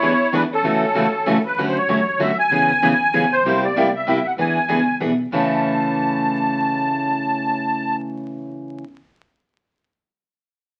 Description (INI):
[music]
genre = acoustic string swing (jazz manouche)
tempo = 192 BPM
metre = 3/4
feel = swing 60% on 8ths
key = A major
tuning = A4 = 441 Hz
[part]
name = musette accordion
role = melody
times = 0.0-8.0 s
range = A4 to A5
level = -22 LUFS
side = equal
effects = none
[part]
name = warm violin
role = second line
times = 0.0-1.4 s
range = C#4 to E4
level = -28 LUFS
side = equal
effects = none
[part]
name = picked steel-string acoustic guitar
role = accompaniment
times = 0.0-8.8 s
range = A2 to G#4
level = -23 LUFS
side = equal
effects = none
[part]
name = upright bass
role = bass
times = 0.0-8.7 s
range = A1 to E2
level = -42 LUFS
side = equal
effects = none
[sound]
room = wet studio reverb, RT60 0.6 s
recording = very old 78 rpm record, vinyl crackle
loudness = -19 LUFS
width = mono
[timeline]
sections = 0.0-1.6 A section; 1.6-5.3 B section; 5.3-7.2 C section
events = none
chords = 0.0 E7; 0.6 A6; 1.6 Dmaj9; 2.5 C#m7; 3.4 C7; 4.4 E7; 5.3 A